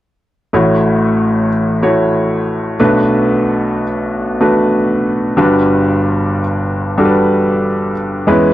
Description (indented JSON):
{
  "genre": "pop",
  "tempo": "93 BPM",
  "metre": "4/4",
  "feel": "straight",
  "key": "unclear",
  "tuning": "A4 = 440 Hz",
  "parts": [
    { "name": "clear upright piano", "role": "accompaniment", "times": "0.5-8.5 s", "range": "G1 to C#5", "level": "-11 LUFS", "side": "equal", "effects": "none" }
  ],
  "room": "light reverb",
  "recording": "dry, close 1970s-style studio recording",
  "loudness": "-12 LUFS",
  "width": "side -14 dB against mid",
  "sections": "0.5-8.5 A section",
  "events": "none",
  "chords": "0.5 A6; 2.8 Bm7; 5.4 Gmaj7"
}